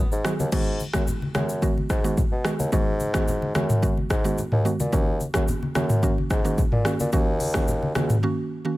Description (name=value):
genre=afrobeats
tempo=109 BPM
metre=4/4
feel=straight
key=unclear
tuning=A4 = 444 Hz
part: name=warm bassoon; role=bass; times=0.1-8.2 s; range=C#2 to B2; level=-27 LUFS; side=equal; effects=none
part: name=afro-pop drum kit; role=drums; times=0.1-8.2 s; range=crash cymbal, hi-hat, kick drum, rim click, shaker, toms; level=-24 LUFS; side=equal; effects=none
part: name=mallet-like synth pluck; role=accompaniment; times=0.2-8.8 s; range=D#3 to F#4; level=-27 LUFS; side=right 2 dB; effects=chorus
part: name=congas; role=percussion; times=0.4-8.1 s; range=none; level=-31 LUFS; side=left 1 dB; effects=none
room=digital ambience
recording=none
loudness=-21 LUFS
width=side -18 dB against mid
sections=0.5-8.8 A section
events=break 8.2-8.8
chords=0.0 B; 0.5 G#m7; 4.9 D#m7